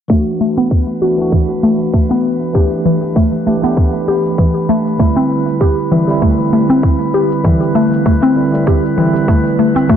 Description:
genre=organic downtempo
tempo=98 BPM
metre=4/4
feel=swing 55% on 16ths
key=A dorian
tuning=A4 = 442 Hz
part: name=tine electric piano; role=accompaniment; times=0.1-10.0 s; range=D3 to G4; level=-17 LUFS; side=right 2 dB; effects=medium stereo tremolo, sidechain pumping, tape echo
part: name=mallet-like synth pluck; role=arpeggios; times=0.1-10.0 s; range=E3 to G4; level=-14 LUFS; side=left 1 dB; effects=chorus, phaser, tape echo
part: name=electronic kick drum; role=drums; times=0.1-10.0 s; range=none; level=-13 LUFS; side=equal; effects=none
part: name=shaker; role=drums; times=0.1-10.0 s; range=none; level=-55 LUFS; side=right 1 dB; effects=none
part: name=drifting glass-harmonics texture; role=texture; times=0.5-10.0 s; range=B4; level=-25 LUFS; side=left 1 dB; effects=chorus, built-in reverb
room=moderate echo chamber reverb, RT60 2.6 s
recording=blown-out, overdriven recording, overdrive, low-pass filter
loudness=-11 LUFS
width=side -9 dB against mid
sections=0.1-10.0 A section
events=filter sweep on synth pluck 0.1-10.0; filter sweep 0.1-10.0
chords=0.1 Bm7; 2.6 Em; 5.0 Am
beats=| 0.10 0.71 1.33 1.94 | 2.55 3.16 3.77 4.39 | 5.00 5.61 6.22 6.84 | 7.45 8.06 8.67 9.29 | 9.90

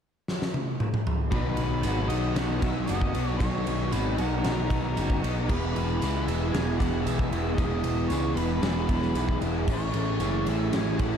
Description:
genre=rock, shoegaze and dream pop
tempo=115 BPM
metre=4/4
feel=straight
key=B major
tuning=A4 = 440 Hz
part: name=big rock drum kit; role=drums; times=0.3-11.1 s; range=crash cymbal, kick drum, ride cymbal, snare drum, toms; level=-29 LUFS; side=equal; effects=none
part: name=octave-fuzz lead guitar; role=melody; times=1.3-11.2 s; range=A#4 to G#5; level=-37 LUFS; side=equal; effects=distortion, tape echo
part: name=direct-recorded clean electric guitar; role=arpeggios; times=1.3-11.2 s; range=E3 to G#4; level=-40 LUFS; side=right 14 dB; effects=none
part: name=electric guitar through a small old amp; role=riff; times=1.3-11.2 s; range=E2 to G#4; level=-33 LUFS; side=right 12 dB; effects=reverse reverb
part: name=overdriven electric guitar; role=riff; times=1.3-11.2 s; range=A2 to E4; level=-31 LUFS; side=left 11 dB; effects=analog chorus
part: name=fuzz picked electric bass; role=bass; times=1.3-11.2 s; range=E1 to C#2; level=-29 LUFS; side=equal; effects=overdrive
part: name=tambourine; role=percussion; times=1.8-10.3 s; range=none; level=-47 LUFS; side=right 11 dB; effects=none
room=small room ambience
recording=dark, warm production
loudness=-24 LUFS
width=side -8 dB against mid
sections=0.0-1.3 A section; 1.3-11.2 B section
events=drum fill 0.3-1.3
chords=0.0 N.C.; 1.3 Bmaj7; 5.5 E; 9.7 Amaj7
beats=0.27 0.79 | 1.31 1.83 2.35 2.88 | 3.40 3.92 4.45 4.97 | 5.49 6.02 6.54 7.06 | 7.59 8.11 8.64 9.16 | 9.69 10.21 10.74

